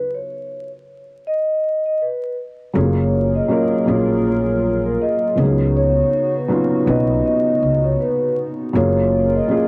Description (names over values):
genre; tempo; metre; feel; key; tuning
lo-fi hip hop; 80 BPM; 4/4; swing 58% on 16ths; F# major; A4 = 440 Hz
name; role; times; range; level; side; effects
vibraphone with soft mallets; melody; 0.0-9.7 s; A#4 to D#5; -23 LUFS; equal; low-pass filter, cassette tape
felt-muted upright piano; accompaniment; 2.7-9.7 s; E#3 to B4; -22 LUFS; equal; cassette tape, low-pass filter
hollow soft pad; sustained chords; 3.1-9.7 s; C#3 to A#4; -28 LUFS; equal; chorus, low-pass filter, cassette tape
upright bass; bass; 2.8-9.4 s; F#1 to C#2; -23 LUFS; equal; none
room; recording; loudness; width
moderate booth ambience, RT60 0.2 s; home recording on cassette, vinyl crackle; -18 LUFS; mono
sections
0.0-2.7 A section; 2.7-9.7 B section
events
stop 0.0-2.7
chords
0.0 N.C.; 2.7 F#maj9; 5.4 C#9sus4; 8.7 F#maj9